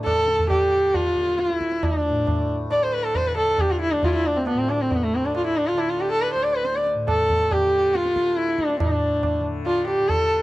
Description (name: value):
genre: indian classical, Hindustani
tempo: 138 BPM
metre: 4/4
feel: straight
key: D raga bhimpalasi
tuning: A4 = 441 Hz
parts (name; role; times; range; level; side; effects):
- rich sarangi; melody; 0.0-10.4 s; A3 to D5; -20 LUFS; equal; none
- tanpura; drone; 0.0-10.4 s; D2 to D3; -31 LUFS; left 2 dB; none
- tabla; percussion; 0.1-10.3 s; none; -27 LUFS; right 1 dB; none
room: little or no reverb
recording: dry, close 1970s-style studio recording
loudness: -19 LUFS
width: side -17 dB against mid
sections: 0.0-8.8 A section; 8.8-10.4 B section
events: speeding up 0.0-10.4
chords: none